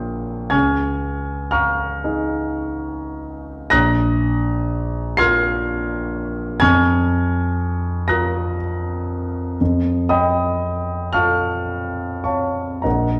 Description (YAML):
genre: classical, impressionist solo piano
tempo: 34-43 BPM (dotted quarters)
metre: 6/8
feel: rubato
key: unclear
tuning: A4 = 443 Hz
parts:
  - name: warm concert grand piano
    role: solo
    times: 0.0-13.2 s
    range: Bb1 to C7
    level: -20 LUFS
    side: equal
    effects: none
room: wet recital hall reverb, RT60 1.4 s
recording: dark, warm production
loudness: -20 LUFS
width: mono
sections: 0.0-13.2 A section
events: none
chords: 0.0 Bbm6; 0.5 Dbadd9; 3.7 Bbsus2; 6.6 F7sus4; 9.6 Faug7